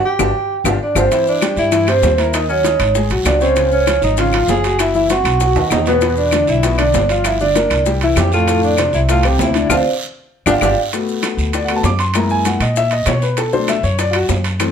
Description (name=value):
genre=Afro-Cuban jazz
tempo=196 BPM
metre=4/4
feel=straight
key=unclear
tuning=A4 = 441 Hz
part: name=vibraphone with medium mallets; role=melody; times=0.0-10.7 s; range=B4 to Ab5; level=-17 LUFS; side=right 4 dB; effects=none
part: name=breathy tenor saxophone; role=second line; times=0.0-10.7 s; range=B3 to Ab4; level=-21 LUFS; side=left 4 dB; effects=none
part: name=warm concert grand piano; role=accompaniment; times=0.2-14.7 s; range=A2 to Eb6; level=-19 LUFS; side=left 4 dB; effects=none
part: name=upright bass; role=bass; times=0.2-14.7 s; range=F#1 to B2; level=-19 LUFS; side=equal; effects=none
part: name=bongos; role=percussion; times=0.2-14.7 s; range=none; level=-25 LUFS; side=left 7 dB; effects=none
part: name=claves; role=percussion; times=0.2-14.7 s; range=none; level=-27 LUFS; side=left 8 dB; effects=none
part: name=maracas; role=percussion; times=0.2-14.7 s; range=none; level=-30 LUFS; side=left 7 dB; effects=none
part: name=timbales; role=percussion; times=0.2-14.7 s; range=none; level=-24 LUFS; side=right 6 dB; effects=none
part: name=guiro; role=percussion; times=1.1-14.7 s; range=none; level=-30 LUFS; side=right 5 dB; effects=none
room=moderate studio reverb, RT60 0.8 s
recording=none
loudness=-13 LUFS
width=side -7 dB against mid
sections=0.0-1.1 A section; 1.1-10.9 B section; 10.9-14.7 C section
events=band accent 0.0-1.1, 9.7-10.9; drum fill 0.3-1.1, 5.6-6.0, 10.2-10.9; grand piano solo 10.9-14.7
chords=0.0 Gmaj7(no3); 0.5 G5; 1.1 C; 2.3 Ebm7; 3.0 Bb7alt/Ab; 3.6 Db; 4.8 Cmaj7#11/F#; 5.4 B; 6.0 Em7; 7.2 Gm7; 7.9 C6; 8.5 F6; 9.7 Dm7; 10.3 G5; 10.9 D6; 12.2 F#7; 13.4 Bm7